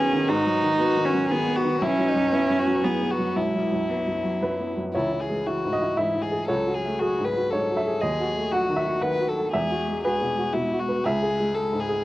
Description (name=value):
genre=neoclassical piano and strings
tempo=118 BPM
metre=3/4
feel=rubato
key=C# minor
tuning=A4 = 439 Hz
part: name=warm violin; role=melody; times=0.0-12.0 s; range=D#4 to B4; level=-26 LUFS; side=left 3 dB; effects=cassette tape
part: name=warm cello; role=second line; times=0.0-12.0 s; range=E3 to D#4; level=-28 LUFS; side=right 2 dB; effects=cassette tape
part: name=warm upright piano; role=accompaniment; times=0.0-12.0 s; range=B1 to F#5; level=-26 LUFS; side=right 1 dB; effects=cassette tape
part: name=glassy FM pad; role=sustained chords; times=0.0-4.9 s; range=D#4 to B4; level=-33 LUFS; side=left 1 dB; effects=none
room=light reverb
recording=home recording on cassette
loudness=-22 LUFS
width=side -16 dB against mid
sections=0.0-4.9 A section; 4.9-12.0 B section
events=none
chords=0.0 G#m7; 1.8 Bsus4; 4.9 C#m; 6.5 F#madd9/C#; 8.0 D#dim; 9.5 Eadd9; 11.0 C#m